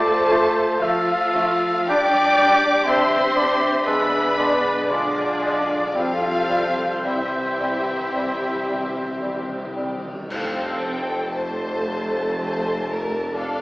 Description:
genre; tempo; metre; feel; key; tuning
classical, slow romantic movement for symphony orchestra; 53-62 BPM; 4/4; rubato; F major; A4 = 441 Hz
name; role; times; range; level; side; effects
rich studio violin section; melody; 0.0-13.6 s; D5 to D6; -26 LUFS; left 1 dB; none
flute section; second line; 0.0-9.7 s; F4 to G5; -25 LUFS; equal; none
warm oboe; second line; 0.0-9.7 s; G4 to E5; -25 LUFS; equal; none
warm studio viola section; accompaniment; 0.0-13.6 s; A3 to D5; -25 LUFS; equal; none
dark French horn section; sustained chords; 0.0-10.0 s; G3 to F4; -30 LUFS; equal; none
rich symphonic cello section; bass; 0.0-13.6 s; F2 to D4; -32 LUFS; equal; none
mellow clarinet; second line; 0.3-9.9 s; C4 to F4; -32 LUFS; equal; none
warm studio violin section; second line; 0.3-13.6 s; C4 to C5; -30 LUFS; left 1 dB; none
mellow bassoon; accompaniment; 0.3-9.9 s; G3 to A3; -29 LUFS; equal; none
rich studio double bass section; bass; 0.3-13.6 s; F1 to D2; -38 LUFS; right 1 dB; none
timpani; percussion; 5.9-10.3 s; C3; -37 LUFS; equal; none
cymbal swell, clash cymbals and concert bass drum; percussion; 6.0-12.3 s; none; -37 LUFS; equal; none
dark tuba; bass; 10.3-13.6 s; F1; -30 LUFS; equal; none
room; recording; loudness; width
wet recital hall reverb, RT60 1.6 s; recorded in a church or concert hall, AM radio sound; -18 LUFS; side -21 dB against mid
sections
0.0-10.3 A section; 10.3-13.6 B section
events
timpani fill 6.0-10.3; band accent 10.3-11.3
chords
0.0 Dm7; 1.9 Gm/Bb; 3.9 Bdim7; 6.0 C; 10.3 F

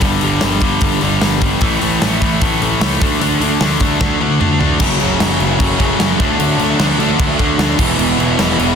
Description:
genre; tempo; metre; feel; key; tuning
punk rock; 151 BPM; 4/4; straight; unclear; A4 = 440 Hz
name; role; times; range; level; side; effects
sludgy distorted guitar; riff; 0.0-8.8 s; E2 to D4; -19 LUFS; right 14 dB; overdrive
tight distorted guitar; riff; 0.0-8.8 s; E2 to D4; -18 LUFS; left 15 dB; distortion
fuzz picked electric bass; bass; 0.0-8.7 s; E1 to D2; -20 LUFS; equal; overdrive
big rock drum kit; drums; 0.0-8.7 s; crash cymbal, hi-hat, kick drum, snare drum, toms; -17 LUFS; equal; none
distorted electric guitar; riff; 4.8-8.8 s; F#2 to E4; -20 LUFS; left 1 dB; distortion
room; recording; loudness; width
little or no reverb; dense, heavily limited modern master; -12 LUFS; side -7 dB against mid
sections
0.0-4.8 A section; 4.8-8.8 B section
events
drum fill 4.0-4.8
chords
0.0 G5; 1.6 A5; 3.0 D5; 4.8 F#m; 6.2 D; 7.8 E

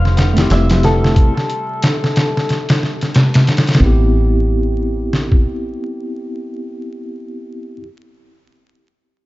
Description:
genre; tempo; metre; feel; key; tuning
trip hop; 91 BPM; 4/4; swing 60% on 16ths; A minor; A4 = 437 Hz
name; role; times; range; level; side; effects
santur; melody; 0.0-3.8 s; A4 to F5; -23 LUFS; left 2 dB; tape echo
warbly tape-like pad; sustained chords; 0.0-1.2 s; C3 to C6; -27 LUFS; right 1 dB; none
deep dub fingered electric bass; bass; 0.0-5.7 s; F1 to A1; -16 LUFS; equal; none
bowed-like drone; texture; 0.0-3.8 s; G3 to G4; -32 LUFS; equal; none
trip hop sampler-style drum kit; drums; 0.1-5.4 s; hi-hat, kick drum, snare drum; -14 LUFS; equal; none
tabla; percussion; 0.1-1.1 s; none; -31 LUFS; right 4 dB; none
bell-like tine electric piano; accompaniment; 0.3-7.9 s; A3 to G4; -21 LUFS; equal; fast stereo tremolo, harmonic tremolo, tape echo
room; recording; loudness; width
little or no reverb; dark, warm production, vinyl crackle, nothing above 7.7 kHz; -12 LUFS; side -18 dB against mid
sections
0.0-3.8 A section; 3.8-6.4 B section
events
none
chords
0.0 Fmaj7; 3.8 Am7

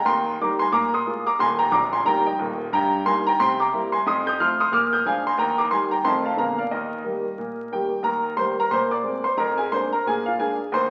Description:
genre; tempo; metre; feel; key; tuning
jazz, stride piano; 180 BPM; 4/4; swing 60% on 8ths; Eb major; A4 = 440 Hz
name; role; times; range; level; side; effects
clear concert grand piano; solo; 0.0-10.9 s; Bb0 to G6; -22 LUFS; equal; none
room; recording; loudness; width
wet large studio reverb, RT60 1.4 s; very old 78 rpm record, vinyl crackle; -23 LUFS; mono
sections
0.0-8.1 A section; 8.1-10.9 A section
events
none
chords
0.0 Eb; 0.7 Bb5; 1.4 Eb; 2.7 Eb/G; 3.4 C7; 4.0 F7; 4.7 Bb7; 5.4 Eb; 6.0 F7; 6.4 Bb7b9; 6.7 Eb; 8.7 Bb9; 9.4 Bb7/F

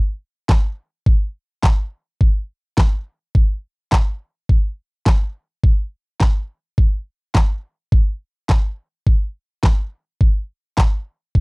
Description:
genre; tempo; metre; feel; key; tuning
pop; 105 BPM; 4/4; straight; none; none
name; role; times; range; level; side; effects
pop drum kit; drums; 0.5-11.4 s; handclaps, kick drum, snare drum; -14 LUFS; equal; none
room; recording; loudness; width
little or no reverb; dry, gritty hardware recording, cassette tape; -17 LUFS; side -35 dB against mid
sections
0.0-11.4 A section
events
none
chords
none

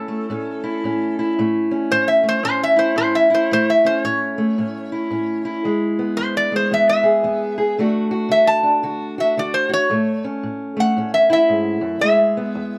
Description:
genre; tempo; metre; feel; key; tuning
acoustic country blues, solo or duo; 113 BPM; 4/4; swing 62% on 8ths; A major; A4 = 441 Hz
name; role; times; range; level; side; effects
metal-body resonator slide guitar; melody; 0.0-12.8 s; A4 to A5; -19 LUFS; equal; none
fingerpicked steel-string acoustic guitar; accompaniment; 0.0-12.8 s; E2 to G#4; -23 LUFS; equal; none
room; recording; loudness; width
light reverb; close, detailed microphones; -19 LUFS; mono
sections
0.0-12.8 A section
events
resonator guitar played with a steel bar solo 0.0-12.8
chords
0.0 A; 5.6 E; 7.8 D; 9.9 A; 12.0 E

